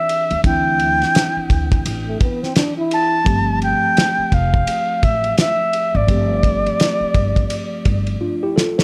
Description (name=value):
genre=hip hop, jazz-hop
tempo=85 BPM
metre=4/4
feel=swing 61% on 16ths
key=unclear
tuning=A4 = 440 Hz
part: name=reedy silver concert flute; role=melody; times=0.0-8.1 s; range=D5 to A5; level=-21 LUFS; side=equal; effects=analog delay
part: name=mellow tine electric piano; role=accompaniment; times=0.0-8.8 s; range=E3 to C5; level=-26 LUFS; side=equal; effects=none
part: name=cloth-damped thuddy drum kit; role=drums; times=0.1-8.8 s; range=hi-hat, kick drum, ride cymbal, snare drum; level=-21 LUFS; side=equal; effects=none
part: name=upright bass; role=bass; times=0.3-8.1 s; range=F1 to Eb2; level=-24 LUFS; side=equal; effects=none
part: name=breathy trombone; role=second line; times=2.1-3.2 s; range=A3 to E4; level=-24 LUFS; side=equal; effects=none
room=light reverb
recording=none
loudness=-17 LUFS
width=mono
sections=0.0-8.8 A section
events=drum fill 8.2-8.8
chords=0.0 D9sus4; 3.3 G9sus4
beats=| 0.44 1.15 1.86 2.56 | 3.27 3.97 4.68 5.38 | 6.09 6.80 7.50 8.21